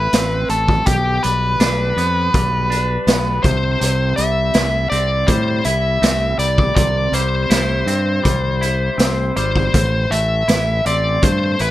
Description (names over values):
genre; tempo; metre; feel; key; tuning
quiet-loud alternative rock; 81 BPM; 4/4; straight; unclear; A4 = 440 Hz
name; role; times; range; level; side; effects
nasal lead guitar with a parked wah; melody; 0.0-11.7 s; G4 to E5; -19 LUFS; left 1 dB; overdrive, slapback echo
semi-hollow electric guitar; arpeggios; 0.0-11.7 s; A2 to E4; -25 LUFS; equal; tremolo
growling fingered electric bass; bass; 0.0-11.7 s; G#1 to A2; -20 LUFS; equal; overdrive
raw garage drum kit; drums; 0.1-11.7 s; hi-hat, kick drum, snare drum; -18 LUFS; equal; none
room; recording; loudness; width
light reverb; none; -14 LUFS; side -14 dB against mid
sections
0.0-11.7 A section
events
none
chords
0.0 Am; 0.9 G/B; 3.4 C; 9.7 Am